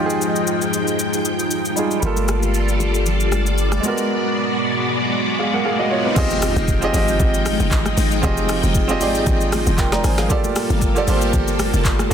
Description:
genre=amapiano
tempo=116 BPM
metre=4/4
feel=swing 55% on 16ths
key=F dorian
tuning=A4 = 440 Hz
part: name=warm concert grand piano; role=accompaniment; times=0.0-12.1 s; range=G3 to Bb5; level=-22 LUFS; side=right 3 dB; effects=none
part: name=string machine, full ensemble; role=sustained chords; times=0.0-12.1 s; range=F3 to G5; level=-22 LUFS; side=left 1 dB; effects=phaser, ensemble chorus, sidechain pumping
part: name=afro-pop drum kit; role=drums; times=0.1-12.1 s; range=crash cymbal, handclaps, hi-hat, kick drum, rim click, shaker, snare drum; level=-22 LUFS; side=equal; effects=none
part: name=punchy sub bass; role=bass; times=2.0-3.8 s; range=G1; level=-20 LUFS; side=equal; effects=none
part: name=congas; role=percussion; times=2.0-12.1 s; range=none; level=-30 LUFS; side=left 5 dB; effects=none
part: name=riser and impact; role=sound effects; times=5.1-8.2 s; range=none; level=-29 LUFS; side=left 1 dB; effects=none
part: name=hollow log drum bass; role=bass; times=6.6-12.1 s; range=F1 to Ab1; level=-21 LUFS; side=equal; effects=none
room=light reverb, digital ambience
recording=dense, heavily limited modern master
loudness=-16 LUFS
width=side -8 dB against mid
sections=0.0-6.2 A section; 6.2-12.1 B section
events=riser 5.1-6.2; drop 6.2-12.1; impact 6.2-8.2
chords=0.0 Fm9; 2.0 Gm9; 3.8 Abm9; 6.2 Fm9; 10.3 Gm9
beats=0.47 0.99 1.51 | 2.02 2.54 3.06 3.58 | 4.09 4.61 5.13 5.64 | 6.16 6.68 7.20 7.71 | 8.23 8.75 9.27 9.78 | 10.30 10.82 11.34 11.85

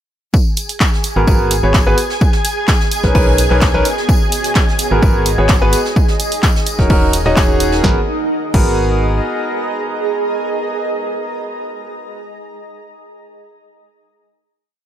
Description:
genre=piano house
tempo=128 BPM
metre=4/4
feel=straight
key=G# minor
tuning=A4 = 440 Hz
part: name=analog string pad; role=sustained chords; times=0.3-7.8 s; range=G#4 to G#5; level=-23 LUFS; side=right 1 dB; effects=ensemble chorus, sidechain pumping
part: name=electronic kick drum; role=drums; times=0.3-8.7 s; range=none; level=-14 LUFS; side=equal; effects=none
part: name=jazz brush drum kit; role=drums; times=0.3-7.8 s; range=hi-hat, snare drum, tambourine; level=-26 LUFS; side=equal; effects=high-pass filter on hats, high-pass filter on snare, high-pass filter on perc, high-pass filter on room
part: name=granular cloud pad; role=texture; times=2.1-11.6 s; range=B3 to B5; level=-23 LUFS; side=right 2 dB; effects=built-in reverb, sidechain pumping
part: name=punchy analog drum machine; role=drums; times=0.6-8.7 s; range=crash cymbal, handclaps, hi-hat, snare drum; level=-20 LUFS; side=equal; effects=none
part: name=bright concert grand piano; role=riff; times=1.2-12.2 s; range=B3 to D#5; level=-18 LUFS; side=equal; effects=vintage 12-bit sampler grit, sidechain pumping, digital delay
part: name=organ-like FM bass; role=bass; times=1.2-9.2 s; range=D#1 to B1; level=-17 LUFS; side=equal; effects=sidechain pumping
room=little or no reverb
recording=none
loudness=-12 LUFS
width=side -10 dB against mid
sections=0.3-7.8 groove; 7.8-11.6 final chord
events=fade-in on ambient pad 0.3-7.8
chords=0.3 G#m9; 2.0 Bmaj9; 3.9 G#m9; 6.0 D#m7; 7.8 G#m9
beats=| 0.34 0.81 1.27 1.74 | 2.21 2.68 3.15 3.62 | 4.09 4.56 5.03 5.49 | 5.96 6.43 6.90 7.37 | 7.84 8.31 8.78 9.24 | 9.71 10.18 10.65 11.12

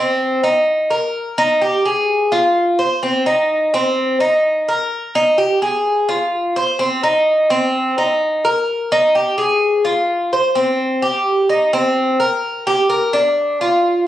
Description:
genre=latin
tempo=128 BPM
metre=4/4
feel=straight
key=C minor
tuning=A4 = 440 Hz
part: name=Cuban tres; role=solo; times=0.0-14.1 s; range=C4 to C5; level=-14 LUFS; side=equal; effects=none
room=moderate studio reverb, RT60 0.6 s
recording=recorded on a phone in the room, studio reverb, compression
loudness=-14 LUFS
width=side -12 dB against mid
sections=0.0-10.6 A section; 10.6-14.1 B section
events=none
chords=none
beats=0.20 0.67 | 1.14 1.61 2.09 2.56 | 3.03 3.50 3.98 4.45 | 4.92 5.39 5.86 6.33 | 6.80 7.27 7.74 8.21 | 8.68 9.14 9.61 10.08 | 10.55 11.02 11.49 11.95 | 12.42 12.89 13.36 13.82

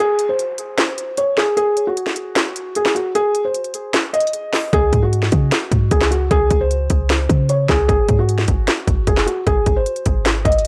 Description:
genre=hip hop, trap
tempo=152 BPM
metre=4/4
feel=half-time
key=unclear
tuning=A4 = 440 Hz
part: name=felt-muted upright piano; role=melody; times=0.0-10.7 s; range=F#4 to D#5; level=-21 LUFS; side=equal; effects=analog delay
part: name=downlifter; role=sound effects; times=0.0-1.6 s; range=none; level=-46 LUFS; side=equal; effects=none
part: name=trap drum kit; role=drums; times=0.2-10.7 s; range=handclaps, hi-hat, kick drum, snare drum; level=-21 LUFS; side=equal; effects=none
part: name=clean 808-style bass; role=bass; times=4.7-10.6 s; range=F#1 to C#3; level=-20 LUFS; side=equal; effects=none
room=digital ambience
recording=dry, gritty hardware recording, cassette tape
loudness=-18 LUFS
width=mono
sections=0.0-10.7 A section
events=break 0.0-4.7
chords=0.0 N.C.; 4.7 C#5; 7.9 N.C.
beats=0.39 0.78 1.18 | 1.57 1.97 2.36 2.76 | 3.15 3.55 3.94 4.33 | 4.73 5.12 5.52 5.91 | 6.31 6.70 7.10 7.49 | 7.89 8.28 8.68 9.07 | 9.47 9.86 10.26 10.65

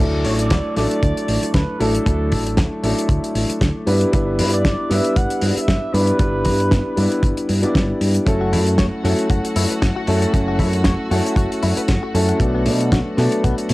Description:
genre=nu-disco, nu disco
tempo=116 BPM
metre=4/4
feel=swing 55% on 16ths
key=D major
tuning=A4 = 440 Hz
part: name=warm concert grand piano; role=accompaniment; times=0.0-13.7 s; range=F#3 to D5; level=-20 LUFS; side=equal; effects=sidechain pumping, low-pass filter, cassette tape
part: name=fingered electric bass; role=bass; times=0.0-13.7 s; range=F#1 to B2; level=-20 LUFS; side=equal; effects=tube saturation
part: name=muted trumpet section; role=melody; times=0.2-7.5 s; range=A4 to F#5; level=-25 LUFS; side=right 1 dB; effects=vintage 12-bit sampler grit, cassette tape, tape echo
part: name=damped 70s drum kit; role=drums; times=0.2-13.7 s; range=hi-hat, snare drum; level=-24 LUFS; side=left 1 dB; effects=cassette tape
part: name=kick drum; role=drums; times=0.5-13.6 s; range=none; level=-18 LUFS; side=equal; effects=cassette tape
part: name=clear studio string section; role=sustained chords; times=8.3-13.7 s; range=F#4 to F#5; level=-31 LUFS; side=equal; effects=sidechain pumping, cassette tape
part: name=direct-recorded clean electric guitar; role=riff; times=8.4-13.7 s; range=A3 to C#5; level=-30 LUFS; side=left 6 dB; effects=analog chorus, vintage 12-bit sampler grit, cassette tape, tape echo
room=light reverb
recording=home recording on cassette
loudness=-16 LUFS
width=side -19 dB against mid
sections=0.0-13.7 A section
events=none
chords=0.0 Dadd9; 3.9 G6; 8.3 F#m7; 12.4 Bm7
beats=0.51 1.03 1.54 | 2.06 2.58 3.10 3.61 | 4.13 4.65 5.16 5.68 | 6.20 6.72 7.23 7.75 | 8.27 8.79 9.30 9.82 | 10.34 10.85 11.37 11.89 | 12.40 12.92 13.44

